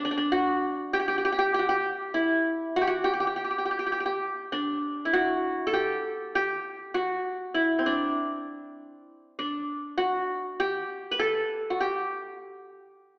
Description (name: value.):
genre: Arabic maqam ensemble.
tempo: 99 BPM.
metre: 4/4.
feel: straight.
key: G maqam ajam.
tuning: A4 = 438 Hz.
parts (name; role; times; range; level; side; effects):
qanun; solo; 0.0-13.2 s; C4 to B4; -25 LUFS; equal; none.
room: wet concert hall reverb, RT60 1.9 s.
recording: AM radio sound.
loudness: -25 LUFS.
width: side -24 dB against mid.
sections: 0.0-13.2 A section.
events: none.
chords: none.